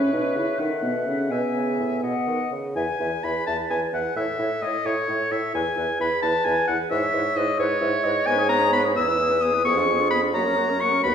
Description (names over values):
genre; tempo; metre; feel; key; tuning
quick classical-period movement for wind quintet; 87 BPM (dotted quarters); 6/8; rubato; E major; A4 = 439 Hz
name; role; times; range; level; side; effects
silver concert flute; melody; 0.0-11.1 s; F4 to G#5; -32 LUFS; left 6 dB; none
clear oboe; second line; 0.0-11.1 s; B4 to E6; -24 LUFS; left 3 dB; none
dark clarinet; accompaniment; 0.0-11.1 s; G#4 to E5; -29 LUFS; right 6 dB; none
mellow French horn; accompaniment; 0.0-11.1 s; A#3 to E4; -29 LUFS; right 1 dB; none
mellow bassoon; bass; 0.1-11.1 s; D#2 to D#3; -27 LUFS; right 1 dB; none
room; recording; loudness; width
wet recital hall reverb, RT60 1.7 s; heard from further back in the room; -20 LUFS; side -8 dB against mid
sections
0.0-2.8 A section; 2.8-11.1 B section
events
none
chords
0.0 A; 1.3 E/B; 2.0 B; 2.8 E; 4.2 A; 5.5 E; 6.9 E/G#; 8.3 G#m; 9.0 E; 9.7 Fdim7; 10.3 F#